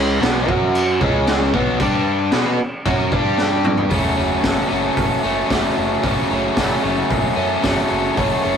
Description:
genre	garage rock duo or trio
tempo	113 BPM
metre	4/4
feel	straight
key	F# minor from 3.9 s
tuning	A4 = 438 Hz
part	overdriven electric guitar	riff	0.0-8.6 s	F#2 to B4	-18 LUFS	equal	none
part	growling picked electric bass	bass	0.0-8.6 s	F#1 to B2	-27 LUFS	equal	overdrive
part	raw garage drum kit	drums	0.2-8.3 s	crash cymbal, hi-hat, kick drum, snare drum, toms	-21 LUFS	equal	none
room	light reverb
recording	rough rehearsal-room recording, warm saturation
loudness	-16 LUFS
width	side -7 dB against mid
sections	0.0-3.9 A section; 3.9-8.6 B section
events	drum fill 3.4-3.9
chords	0.5 F#5; 1.0 C#5; 1.8 G5; 2.3 F#sus4; 3.1 G5; 3.9 F#m

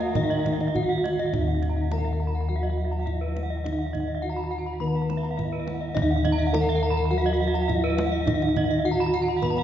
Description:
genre	Balinese gamelan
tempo	104 BPM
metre	4/4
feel	straight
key	Eb pelog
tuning	A4 = 438 Hz
part	gamelan-type bronze metallophone	melody	0.0-9.6 s	Eb4 to Cb5-20c	-28 LUFS	right 1 dB	none
part	clear bass clarinet	second line	0.0-1.0 s	Eb3 to Bb3-30c	-37 LUFS	right 3 dB	none
part	gamelan-type bronze metallophone	accompaniment	0.0-9.6 s	Eb3 to Cb4-20c	-33 LUFS	equal	none
part	gamelan-type bronze metallophone	arpeggios	0.0-9.6 s	Eb5 to Cb6-20c	-32 LUFS	left 4 dB	none
part	gamelan-type bossed gongs	bass	0.0-9.6 s	Eb2 to Bb4-30c	-28 LUFS	left 1 dB	none
part	kendang	percussion	0.0-9.6 s	none	-34 LUFS	right 2 dB	none
part	gamelan-type bronze metallophone	arpeggios	0.1-9.6 s	Cb5-20c to Cb6-20c	-32 LUFS	right 5 dB	none
room	wet church reverb, RT60 3.6 s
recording	recorded in a church or concert hall, nothing above 7.5 kHz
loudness	-22 LUFS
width	side -10 dB against mid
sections	0.0-1.3 A section; 1.3-9.6 B section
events	none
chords	none

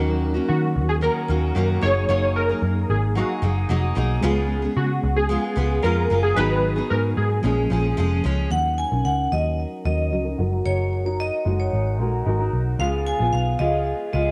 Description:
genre	indie pop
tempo	112 BPM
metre	4/4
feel	straight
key	Eb minor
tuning	A4 = 440 Hz
part	picked steel-string acoustic guitar	accompaniment	0.0-14.3 s	Ab2 to Bb4	-29 LUFS	equal	lush chorus, vibrato effect, low-pass filter
part	reed electric piano	accompaniment	0.0-8.5 s	F3 to Bb4	-31 LUFS	equal	fast tremolo
part	vintage muted picked electric bass	bass	0.0-14.3 s	F1 to Eb3	-25 LUFS	equal	none
part	warm analog keys	melody	0.5-7.9 s	Gb4 to Db5	-27 LUFS	equal	ensemble chorus, tape echo
part	vibraphone with hard mallets	second line	8.5-14.3 s	Db5 to Ab5	-28 LUFS	equal	lush chorus, tape echo
room	moderate echo chamber reverb, RT60 2.4 s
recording	none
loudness	-22 LUFS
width	mono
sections	0.0-8.5 A section; 8.5-14.3 B section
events	filter sweep on steel-string acoustic guitar 8.5-14.3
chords	0.0 Ebm7; 1.8 Gb69; 4.2 Db7; 6.4 Abm7; 7.4 Bbm7; 8.5 Ebm7; 10.4 Gb69; 12.8 Db7

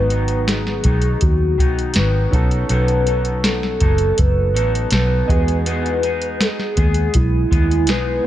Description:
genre	indie pop, bedroom pop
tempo	81 BPM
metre	4/4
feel	straight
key	unclear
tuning	A4 = 440 Hz
part	hollow clarinet-like synth lead	melody	0.0-8.3 s	E4 to B4	-21 LUFS	equal	lush chorus, tape echo
part	clear upright piano	accompaniment	0.0-8.3 s	B3 to A#5	-30 LUFS	right 5 dB	cassette tape, tape echo
part	electric guitar through a small old amp	accompaniment	0.0-8.3 s	G#2 to A4	-26 LUFS	left 3 dB	wide subtle chorus, warbly pitch drift
part	vintage muted fingered electric bass	bass	0.0-8.2 s	F#1 to E2	-19 LUFS	equal	none
part	soft vintage rhythm box	drums	0.1-8.1 s	hi-hat, kick drum, snare drum	-19 LUFS	equal	none
room	digital ambience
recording	echo-heavy mix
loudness	-15 LUFS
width	side -12 dB against mid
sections	0.0-8.3 A section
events	none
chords	0.0 G#m7; 2.3 B7; 5.3 Emaj7

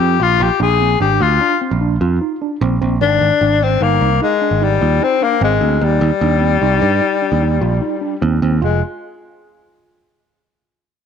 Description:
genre	progressive instrumental, band music in an uneven meter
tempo	150 BPM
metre	7/4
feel	straight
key	unclear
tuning	A4 = 441 Hz
part	breathy tenor saxophone	melody	0.0-8.8 s	G3 to Ab4	-15 LUFS	left 8 dB	none
part	tine electric piano	arpeggios	0.0-8.8 s	Eb3 to F4	-22 LUFS	right 3 dB	overdrive, fast stereo tremolo
part	picked electric bass	bass	0.0-8.8 s	F1 to G2	-16 LUFS	right 3 dB	none
room	moderate spring reverb, RT60 1.9 s, small room ambience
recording	none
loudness	-13 LUFS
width	side -7 dB against mid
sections	0.0-8.6 A section; 8.6-11.1 B section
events	none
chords	0.2 Bb; 3.0 Ab; 5.8 Eb6; 8.6 N.C.

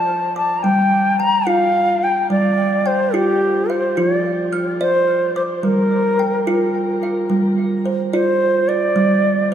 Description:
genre	world meditative, meditative tuned percussion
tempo	72 BPM (dotted quarters)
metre	6/8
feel	straight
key	G minor pentatonic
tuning	A4 = 441 Hz
part	bright bansuri	melody	0.0-9.5 s	G4 to Bb5	-18 LUFS	left 1 dB	shimmer reverb, diffuse ambient delay
part	kalimba	arpeggios	0.0-9.5 s	F3 to F6	-18 LUFS	right 1 dB	diffuse ambient delay
room	wet echo chamber reverb, RT60 1.5 s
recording	lossy compression artefacts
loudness	-15 LUFS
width	side -9 dB against mid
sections	0.0-7.3 A section; 7.3-9.5 B section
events	none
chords	0.0 F; 0.6 G5; 4.0 F5; 5.6 Gm; 7.3 G5

